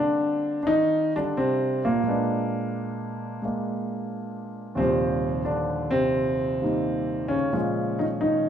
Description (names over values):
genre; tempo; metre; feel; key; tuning
solo jazz; 87 BPM; 4/4; swing 69% on 8ths, rubato; Eb major; A4 = 442 Hz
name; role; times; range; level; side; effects
warm grand piano; solo; 0.0-8.5 s; Eb2 to C5; -23 LUFS; equal; none
room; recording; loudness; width
moderate large studio reverb, RT60 1.1 s; band playing live in one room; -23 LUFS; side -9 dB against mid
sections
0.0-8.5 A section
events
none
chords
0.0 Cm7; 2.1 Bb7b9; 4.8 Ebmaj13; 7.5 Bbm7